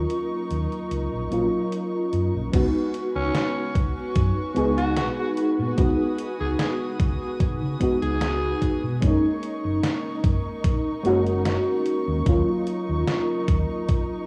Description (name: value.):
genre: vaporwave.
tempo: 74 BPM.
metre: 4/4.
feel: swing 54% on 16ths.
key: unclear.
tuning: A4 = 441 Hz.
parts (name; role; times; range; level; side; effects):
mellow FM electric piano; accompaniment; 0.0-14.3 s; F#3 to G#4; -27 LUFS; equal; ensemble chorus, cassette tape, analog delay.
warm chamber string section; sustained chords; 0.0-14.3 s; D#4 to D#6; -35 LUFS; equal; none.
hollow-body short-scale fingered electric bass; bass; 0.0-13.6 s; F#1 to C#3; -29 LUFS; equal; none.
detuned 8-bit digital drum machine; drums; 0.1-14.1 s; crash cymbal, hi-hat, snare drum; -34 LUFS; equal; studio reverb.
electronic kick drum; drums; 2.5-14.1 s; none; -25 LUFS; equal; studio reverb.
raspy alto saxophone; melody; 3.2-8.8 s; C#4 to G#4; -34 LUFS; equal; tape echo.
room: moderate plate reverb, RT60 2.7 s.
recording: rough home demo mix, cassette tape, studio ambience.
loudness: -24 LUFS.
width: mono.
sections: 0.0-2.5 A section; 2.5-14.3 B section.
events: none.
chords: 0.0 D#m7; 2.5 C#7sus4; 9.0 F#6; 12.3 D#m7.